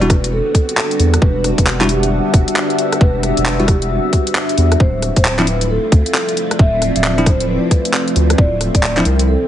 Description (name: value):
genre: UK garage, two-step garage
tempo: 134 BPM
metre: 4/4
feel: swing 63% on 16ths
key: unclear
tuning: A4 = 441 Hz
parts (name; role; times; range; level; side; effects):
- soft string machine; sustained chords; 0.0-9.5 s; G3 to G4; -25 LUFS; equal; phaser, ensemble chorus, sidechain pumping
- bell-like tine electric piano; stabs; 0.0-9.0 s; F3 to F#4; -20 LUFS; equal; digital delay
- saturated sub bass; bass; 0.0-9.4 s; D1 to E2; -17 LUFS; equal; none
- garage drum kit; drums; 0.0-9.3 s; handclaps, hi-hat, rim click; -19 LUFS; equal; none
- deep dark ambient pad; texture; 0.0-9.5 s; F3 to F#5; -21 LUFS; equal; chorus, built-in reverb, sidechain pumping
- vibraphone with soft mallets; melody; 0.1-9.5 s; F#4 to E5; -22 LUFS; equal; tape echo
- electronic kick drum; drums; 0.1-8.8 s; none; -12 LUFS; equal; overdrive
room: light reverb, digital ambience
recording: heavily compressed radio sound, vinyl crackle, nothing above 10.7 kHz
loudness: -12 LUFS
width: side -11 dB against mid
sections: 0.0-9.5 A section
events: none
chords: 0.0 Em9; 4.8 Dm9